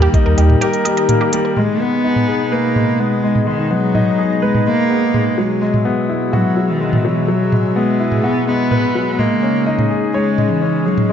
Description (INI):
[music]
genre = piano and strings electronica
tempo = 126 BPM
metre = 4/4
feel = straight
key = G# minor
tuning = A4 = 440 Hz
[part]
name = lush unison pad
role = sustained chords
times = 0.0-11.1 s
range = B2 to A#5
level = -22 LUFS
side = left 1 dB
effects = chorus, sidechain pumping
[part]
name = analog pluck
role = arpeggios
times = 0.0-1.5 s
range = G4 to D#5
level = -24 LUFS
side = right 3 dB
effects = chorus, sidechain pumping, tape echo
[part]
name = warm concert grand piano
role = riff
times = 0.0-11.1 s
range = F#3 to C#5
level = -18 LUFS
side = left 3 dB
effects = tape echo
[part]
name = warm sub bass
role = bass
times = 0.0-0.6 s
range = D#2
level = -11 LUFS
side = equal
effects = sidechain pumping
[part]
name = organic electronic drum kit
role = drums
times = 0.1-11.1 s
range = hi-hat, toms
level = -20 LUFS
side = right 1 dB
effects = low-pass filter on hats, low-pass filter on toms
[part]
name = dark cello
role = melody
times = 1.6-11.1 s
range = D#3 to B3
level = -18 LUFS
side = equal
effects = tape echo
[sound]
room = light reverb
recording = nothing above 7.6 kHz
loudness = -13 LUFS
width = side -8 dB against mid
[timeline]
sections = 0.0-1.6 A section; 1.6-11.1 B section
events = break 0.6-1.6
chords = 0.0 D#; 1.6 G#m; 5.4 Eadd9; 9.2 C#sus2